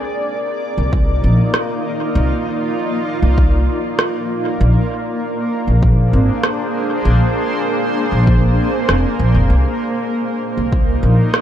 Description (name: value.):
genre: ambient dub.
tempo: 98 BPM.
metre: 4/4.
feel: straight.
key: C minor.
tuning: A4 = 440 Hz.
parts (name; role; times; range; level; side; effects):
granular cloud pad; sustained chords; 0.0-11.4 s; Bb3 to D5; -19 LUFS; equal; built-in reverb.
upright bass; bass; 0.8-11.2 s; F1 to C2; -14 LUFS; equal; tube saturation.
electronic kick drum; drums; 0.9-10.8 s; none; -16 LUFS; equal; overdrive.
electronic rim click; drums; 1.5-11.4 s; none; -20 LUFS; right 1 dB; dub echo.
room: light reverb.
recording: none.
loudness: -14 LUFS.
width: side -10 dB against mid.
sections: 0.0-11.4 A section.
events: none.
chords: 0.0 Cm11; 4.6 Bb9; 9.5 Cm11.